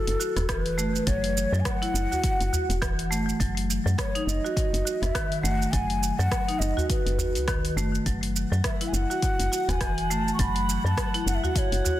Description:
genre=organic downtempo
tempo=103 BPM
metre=4/4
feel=swing 58% on 16ths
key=unclear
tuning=A4 = 440 Hz
part: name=breathy mellow ney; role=melody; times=0.0-12.0 s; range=A4 to C#6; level=-30 LUFS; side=left 1 dB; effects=ping-pong delay
part: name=marimba with hard mallets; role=arpeggios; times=0.0-12.0 s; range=D#3 to F#4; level=-29 LUFS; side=equal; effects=ping-pong delay
part: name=woody FM bass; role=bass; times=0.1-11.8 s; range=E1 to F#2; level=-27 LUFS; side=equal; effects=none
part: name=deep house drum kit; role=drums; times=0.1-12.0 s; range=hi-hat, rim click, shaker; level=-33 LUFS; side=right 1 dB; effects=overdrive
part: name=udu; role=percussion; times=0.4-12.0 s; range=none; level=-30 LUFS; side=equal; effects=none
part: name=electronic kick drum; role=drums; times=0.5-11.7 s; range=none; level=-29 LUFS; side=equal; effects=none
part: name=drifting glass-harmonics texture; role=texture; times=8.4-12.0 s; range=F#5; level=-38 LUFS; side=right 3 dB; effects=chorus, built-in reverb
room=light reverb, digital ambience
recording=dense, heavily limited modern master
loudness=-23 LUFS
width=side -14 dB against mid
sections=0.0-12.0 A section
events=none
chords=0.0 N.C.; 3.4 B/F# (rootless); 8.1 N.C.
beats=0.49 | 1.07 1.65 2.24 2.82 | 3.40 3.98 4.57 5.15 | 5.73 6.31 6.90 7.48 | 8.06 8.64 9.23 9.81 | 10.39 10.97 11.56

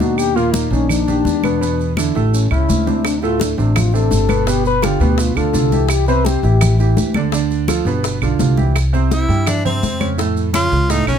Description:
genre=Afro-Cuban jazz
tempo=168 BPM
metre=4/4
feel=straight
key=C major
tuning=A4 = 440 Hz
part: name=dark trombone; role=second line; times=0.0-6.8 s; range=Db4 to B4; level=-20 LUFS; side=left 10 dB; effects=none
part: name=warm concert grand piano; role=accompaniment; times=0.0-11.2 s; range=A2 to G5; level=-20 LUFS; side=right 6 dB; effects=none
part: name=upright bass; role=bass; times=0.0-11.2 s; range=G1 to G2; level=-17 LUFS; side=equal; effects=none
part: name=congas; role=percussion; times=0.0-11.2 s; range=none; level=-23 LUFS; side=left 4 dB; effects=none
part: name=maracas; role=percussion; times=0.0-11.2 s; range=none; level=-30 LUFS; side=right 5 dB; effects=none
part: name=claves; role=percussion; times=0.2-11.2 s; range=none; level=-27 LUFS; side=right 8 dB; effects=none
part: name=bongos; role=percussion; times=3.0-11.2 s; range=none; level=-27 LUFS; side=left 10 dB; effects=none
part: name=breathy tenor saxophone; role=melody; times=9.1-11.2 s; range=C4 to F4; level=-19 LUFS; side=left 1 dB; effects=plate reverb
room=light reverb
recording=none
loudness=-14 LUFS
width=side -8 dB against mid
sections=0.0-8.8 A section; 8.8-11.2 A section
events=trombone solo 0.0-8.8; tenor saxophone solo 8.8-11.2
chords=0.2 Ebmaj7; 1.6 E5; 2.3 A; 3.0 D5; 4.5 G7; 5.9 C; 6.6 A5; 7.3 Dm; 8.0 G7; 8.8 C; 10.2 Faug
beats=| 0.18 0.54 0.90 1.26 | 1.61 1.97 2.33 2.69 | 3.04 3.40 3.76 4.11 | 4.47 4.83 5.18 5.54 | 5.90 6.25 6.61 6.97 | 7.33 7.68 8.04 8.40 | 8.75 9.11 9.47 9.82 | 10.18 10.54 10.90

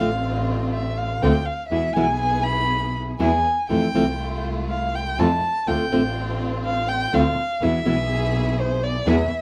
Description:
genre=tango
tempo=123 BPM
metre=4/4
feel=rubato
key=unclear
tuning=A4 = 439 Hz
part: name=warm violin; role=second line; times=0.0-9.4 s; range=C5 to B5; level=-27 LUFS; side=equal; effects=none
part: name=nylon-string guitar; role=accompaniment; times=0.0-9.2 s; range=B2 to F4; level=-24 LUFS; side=equal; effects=none
part: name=warm studio string section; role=stabs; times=0.0-9.3 s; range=A3 to G#4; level=-31 LUFS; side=equal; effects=none
part: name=clear double bass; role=bass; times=0.0-9.3 s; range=A1 to F2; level=-28 LUFS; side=equal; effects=none
room=moderate studio reverb, RT60 0.7 s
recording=none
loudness=-22 LUFS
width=mono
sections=0.0-9.4 A section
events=violin solo 0.0-9.4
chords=0.0 Dm7; 1.7 E; 3.7 Fmaj7; 5.7 Dm7; 7.6 E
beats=0.24 0.73 1.22 | 1.71 2.20 2.70 3.20 | 3.70 4.19 4.69 5.18 | 5.67 6.15 6.64 7.13 | 7.61 8.09 8.58 9.06

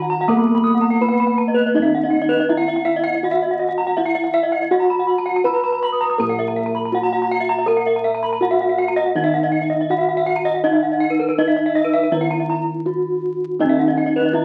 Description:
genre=Balinese gamelan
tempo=81 BPM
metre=4/4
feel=straight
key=Eb pelog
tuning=A4 = 441 Hz
part: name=gamelan-type bronze metallophone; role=melody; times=0.0-14.4 s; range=Eb4 to Cb5-20c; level=-23 LUFS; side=equal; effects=none
part: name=gamelan-type bronze metallophone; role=accompaniment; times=0.0-1.7, 13.6-14.4 s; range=Eb3 to Bb3-30c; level=-22 LUFS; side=equal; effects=none
part: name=gamelan-type bronze metallophone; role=arpeggios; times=0.0-14.4 s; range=Cb5-20c to Eb6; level=-25 LUFS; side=equal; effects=none
part: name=gamelan-type bossed gongs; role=bass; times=0.0-14.4 s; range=Eb2 to Bb4-30c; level=-27 LUFS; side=equal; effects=none
part: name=gamelan-type bronze metallophone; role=arpeggios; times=0.1-14.2 s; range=Bb4-30c to Eb6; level=-24 LUFS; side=equal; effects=none
room=wet studio reverb, RT60 0.8 s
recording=very old 78 rpm record, vinyl crackle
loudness=-18 LUFS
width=mono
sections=0.0-1.7 A section; 1.7-14.4 B section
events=break 12.5-13.6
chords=none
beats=0.28 1.01 | 1.74 2.48 3.23 3.97 | 4.71 5.45 6.19 6.93 | 7.67 8.41 9.15 9.89 | 10.63 11.37 12.12 12.86 | 13.60 14.34

